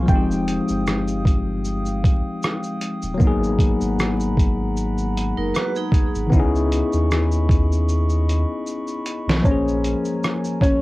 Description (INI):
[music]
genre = lo-fi hip hop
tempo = 77 BPM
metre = 4/4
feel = swing 55% on 16ths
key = Bb minor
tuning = A4 = 440 Hz
[part]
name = bell-like tine electric piano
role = accompaniment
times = 0.0-10.8 s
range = Eb3 to C5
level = -23 LUFS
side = left 2 dB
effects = fast stereo tremolo, cassette tape, low-pass filter
[part]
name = glass harmonica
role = sustained chords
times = 0.0-10.8 s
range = Ab3 to Eb6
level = -33 LUFS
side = right 1 dB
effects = stereo widening, low-pass filter, cassette tape
[part]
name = soft dub sub bass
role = bass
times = 0.0-9.9 s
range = Eb1 to Eb2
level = -23 LUFS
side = equal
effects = tube saturation
[part]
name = felt-muted upright piano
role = melody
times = 0.1-2.4, 9.4-10.8 s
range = Db4 to G5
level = -26 LUFS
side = equal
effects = low-pass filter, analog delay
[part]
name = lo-fi sampler-style drum kit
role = drums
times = 0.1-10.8 s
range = hi-hat, kick drum, rim click, shaker, snare drum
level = -20 LUFS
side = equal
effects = cassette tape
[part]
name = vibraphone with hard mallets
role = second line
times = 5.4-6.3 s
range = Eb4 to Cb5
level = -27 LUFS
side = right 4 dB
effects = low-pass filter, cassette tape, analog delay
[sound]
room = moderate booth ambience, RT60 0.2 s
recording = home recording on cassette, vinyl crackle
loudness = -18 LUFS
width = side -19 dB against mid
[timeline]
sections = 0.0-9.4 A section; 9.4-10.8 B section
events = drum fill 7.9-9.4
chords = 0.1 Fm9; 3.2 Abm9; 6.3 Dbm9; 9.4 Bbm9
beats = | 0.09 0.87 1.65 2.43 | 3.21 3.99 4.77 5.55 | 6.33 7.11 7.88 8.66 | 9.44 10.22